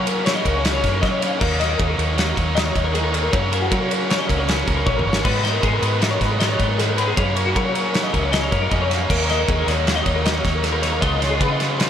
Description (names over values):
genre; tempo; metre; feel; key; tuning
math rock and midwest emo; 156 BPM; 5/4; straight; F# major; A4 = 445 Hz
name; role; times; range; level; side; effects
twelve-string electric guitar; arpeggios; 0.0-11.9 s; F#4 to E#5; -23 LUFS; left 4 dB; ensemble chorus, tape echo
biting overdriven guitar; riff; 0.0-11.9 s; F#2 to E#4; -23 LUFS; right 2 dB; spring reverb
vintage muted fingered electric bass; bass; 0.0-11.9 s; G#1 to F#3; -24 LUFS; equal; none
loose indie drum kit; drums; 0.1-11.9 s; crash cymbal, kick drum, ride cymbal, snare drum, toms; -22 LUFS; equal; none
room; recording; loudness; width
wet lush hall reverb, RT60 2.0 s, small room ambience; dreamy mix soaked in reverb; -17 LUFS; side -9 dB against mid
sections
0.0-11.9 A section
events
drum fill 4.9-5.2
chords
0.0 F#; 1.4 D#m7; 3.3 F#; 5.2 G#m; 7.2 F#maj7; 9.1 D#m7; 11.0 C#7